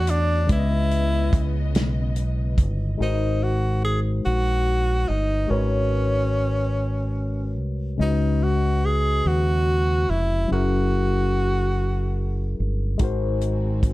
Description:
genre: slow six-eight R&B.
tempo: 48 BPM (dotted quarters).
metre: 6/8.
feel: straight.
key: unclear.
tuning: A4 = 443 Hz.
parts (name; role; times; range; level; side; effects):
breathy tenor saxophone; melody; 0.0-12.6 s; C#4 to G#4; -25 LUFS; equal; slapback echo.
barky tine electric piano; accompaniment; 0.0-13.9 s; C#3 to D#5; -28 LUFS; left 4 dB; overdrive, phaser.
warm symphonic string section; sustained chords; 0.0-3.0, 13.0-13.9 s; C#3 to D#5; -38 LUFS; equal; none.
deep dub fingered electric bass; bass; 0.0-13.9 s; E#1 to E2; -23 LUFS; equal; none.
warm soul drum kit; drums; 0.1-2.8, 13.0-13.9 s; hi-hat, kick drum, snare drum; -21 LUFS; equal; none.
room: light reverb.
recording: dark, warm production.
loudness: -20 LUFS.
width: side -18 dB against mid.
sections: 0.0-3.0 A section; 3.0-13.9 B section.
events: none.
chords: 0.5 C#m9; 3.0 G#9; 5.5 G#m11; 8.0 C#9sus4; 10.5 F#9; 13.0 G#9.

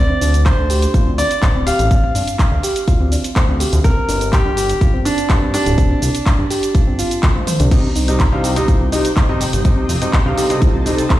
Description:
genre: progressive house.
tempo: 124 BPM.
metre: 4/4.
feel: straight.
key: C dorian.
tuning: A4 = 436 Hz.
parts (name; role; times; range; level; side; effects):
clear grand piano; melody; 0.0-7.6 s; D4 to F5; -21 LUFS; equal; sidechain pumping, ping-pong delay.
soft round pluck; arpeggios; 0.0-11.1 s; Bb3 to C5; -23 LUFS; right 1 dB; chorus, sidechain pumping, ping-pong delay.
fat analog bass; bass; 0.0-11.2 s; D1 to G2; -18 LUFS; equal; sidechain pumping.
house drum kit; drums; 0.2-11.2 s; crash cymbal, handclaps, hi-hat, shaker, toms; -23 LUFS; equal; none.
electronic kick drum; drums; 0.5-11.2 s; none; -14 LUFS; equal; none.
shimmering ambient pad; sustained chords; 8.3-11.2 s; C3 to A4; -24 LUFS; right 1 dB; chorus, built-in reverb, sidechain pumping.
clear baby grand piano; stabs; 7.7-11.0 s; C3 to F5; -21 LUFS; left 1 dB; sidechain pumping, ping-pong delay.
room: digital ambience.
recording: played on a big sound system in a bare room, stone room reverb.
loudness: -13 LUFS.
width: side -15 dB against mid.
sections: 0.0-11.2 A section.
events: drum fill 7.4-7.7.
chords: 0.0 Dm7; 3.8 G5; 7.7 Cm.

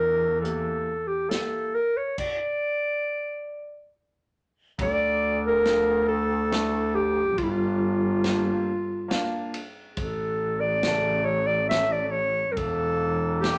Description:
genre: klezmer.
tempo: 69 BPM.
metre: 3/4.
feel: straight.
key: D harmonic minor.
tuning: A4 = 440 Hz.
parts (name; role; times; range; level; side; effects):
mellow clarinet; melody; 0.0-13.6 s; E4 to E5; -27 LUFS; equal; none.
clear double bass; bass; 0.0-13.6 s; E1 to E2; -31 LUFS; equal; none.
clear upright piano; accompaniment; 0.4-13.6 s; C#3 to A4; -36 LUFS; equal; none.
vintage drum kit; drums; 0.4-13.6 s; crash cymbal, hi-hat, kick drum, ride cymbal, snare drum; -35 LUFS; equal; none.
accordion; second line; 13.4-13.6 s; G4; -28 LUFS; equal; none.
room: moderate studio reverb, RT60 0.7 s.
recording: nothing above 10.4 kHz.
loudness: -26 LUFS.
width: mono.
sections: 0.0-4.8 A section; 4.8-13.6 B section.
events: stop 2.2-4.8.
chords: 0.0 Edim; 2.2 N.C.; 4.8 Dm; 7.4 Gm; 10.0 A; 12.6 Edim.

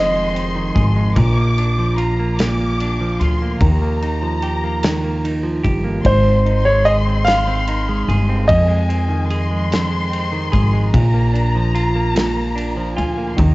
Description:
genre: six-eight pop ballad.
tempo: 49 BPM (dotted quarters).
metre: 6/8.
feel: straight.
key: unclear.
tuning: A4 = 439 Hz.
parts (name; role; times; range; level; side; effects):
clear concert grand piano; melody; 0.0-0.8, 6.1-9.7 s; C5 to F5; -18 LUFS; right 1 dB; cassette tape, plate reverb, tape echo.
warm symphonic violin section; second line; 0.0-13.5 s; Ab5 to D6; -26 LUFS; left 2 dB; cassette tape, plate reverb.
semi-hollow electric guitar; accompaniment; 0.0-13.5 s; F2 to Ab4; -21 LUFS; right 2 dB; phaser, cassette tape, plate reverb.
upright bass; bass; 0.0-13.5 s; F1 to F2; -18 LUFS; equal; none.
modern studio drum kit; drums; 0.4-13.5 s; kick drum, ride cymbal, snare drum; -24 LUFS; equal; cassette tape.
room: light reverb.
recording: home recording on cassette, nothing above 7.8 kHz.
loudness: -15 LUFS.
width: side -20 dB against mid.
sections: 0.0-13.5 A section.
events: none.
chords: 0.0 Fm7; 1.2 Bb; 3.6 Ebadd9; 6.1 Ab; 8.5 Fm7; 10.9 Bb.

